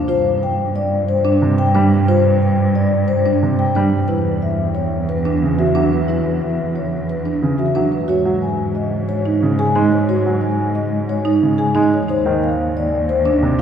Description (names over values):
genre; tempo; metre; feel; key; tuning
classical, minimalist pattern music; 180 BPM; 6/4; straight; unclear; A4 = 441 Hz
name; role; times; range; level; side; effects
vibraphone with soft mallets; melody; 0.1-13.6 s; B4 to Ab5; -21 LUFS; left 5 dB; none
marimba with medium mallets; arpeggios; 0.1-13.6 s; D4 to Ab4; -21 LUFS; right 4 dB; none
warm cello; bass; 0.1-13.6 s; Eb2 to Ab2; -19 LUFS; right 2 dB; none
clear concert grand piano; accompaniment; 1.4-13.6 s; C3 to Ab3; -23 LUFS; right 1 dB; none
room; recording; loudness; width
wet cathedral reverb, RT60 5.6 s; heard from further back in the room; -15 LUFS; side -8 dB against mid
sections
0.0-13.6 A section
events
none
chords
0.1 G5; 4.1 Esus2; 8.1 Ab5; 12.1 N.C.